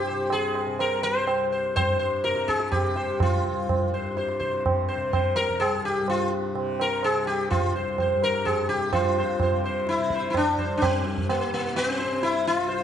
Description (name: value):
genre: indian classical, Hindustani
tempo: 126 BPM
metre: 3/4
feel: straight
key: unclear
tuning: A4 = 439 Hz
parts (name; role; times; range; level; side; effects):
- sitar; melody; 0.0-12.8 s; Bb3 to C5; -25 LUFS; left 1 dB; none
- tanpura; drone; 0.0-12.8 s; C2 to C3; -33 LUFS; left 3 dB; none
- tabla; percussion; 0.3-12.8 s; none; -27 LUFS; right 3 dB; none
room: wet recital hall reverb, RT60 1.4 s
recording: nothing above 10.5 kHz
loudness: -22 LUFS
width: side -9 dB against mid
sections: 0.0-8.9 A section; 8.9-12.8 B section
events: speeding up 0.0-12.8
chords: none